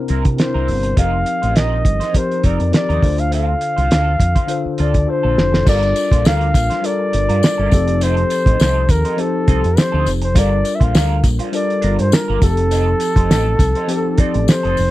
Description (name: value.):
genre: lush 1970s-style soul.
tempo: 102 BPM.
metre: 4/4.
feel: swing 54% on 16ths.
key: G minor.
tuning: A4 = 439 Hz.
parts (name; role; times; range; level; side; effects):
breathy flugelhorn; melody; 0.0-14.9 s; A4 to F5; -20 LUFS; equal; none.
mellow tine electric piano; accompaniment; 0.0-14.9 s; C3 to C5; -22 LUFS; left 4 dB; analog chorus.
electric guitar through a small old amp; riff; 0.1-14.8 s; C4 to C5; -29 LUFS; right 7 dB; wah.
fingered electric bass; bass; 0.1-14.9 s; F1 to C3; -18 LUFS; equal; none.
cloth-damped thuddy drum kit; drums; 0.1-14.9 s; crash cymbal, hi-hat, kick drum, snare drum; -15 LUFS; equal; none.
tambourine; percussion; 5.7-14.9 s; none; -32 LUFS; left 14 dB; none.
room: little or no reverb.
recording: dry, close 1970s-style studio recording.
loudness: -13 LUFS.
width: side -16 dB against mid.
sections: 0.0-5.7 A section; 5.7-14.9 B section.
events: drum fill 5.1-5.7.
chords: 0.0 C7; 1.0 F7sus4; 3.0 Dm7; 5.7 Gm7; 7.7 F7; 10.4 Gm7; 12.4 F7.